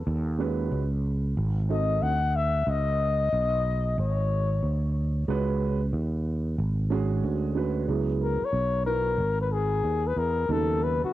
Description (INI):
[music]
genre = hip hop, jazz-hop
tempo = 92 BPM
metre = 4/4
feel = swing 65% on 16ths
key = C# dorian from 7.9 s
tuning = A4 = 442 Hz
[part]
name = sustaining fretless electric bass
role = bass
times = 0.0-11.1 s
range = G#1 to E2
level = -26 LUFS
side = right 1 dB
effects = tube saturation
[part]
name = dark grand piano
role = accompaniment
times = 0.4-11.1 s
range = C#3 to B4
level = -30 LUFS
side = right 7 dB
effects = cassette tape
[part]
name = breathy flugelhorn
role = melody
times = 1.7-11.1 s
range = F#4 to F#5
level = -27 LUFS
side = left 4 dB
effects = cassette tape, tape echo
[sound]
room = light reverb, small room ambience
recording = home recording on cassette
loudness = -24 LUFS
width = side -14 dB against mid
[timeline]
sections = 0.0-7.9 A section; 7.9-11.1 B section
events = flugelhorn solo 7.9-11.1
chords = 0.1 C#9sus4; 1.4 G#7b9; 2.7 C#sus2; 7.9 C#m7; 10.5 C#9sus4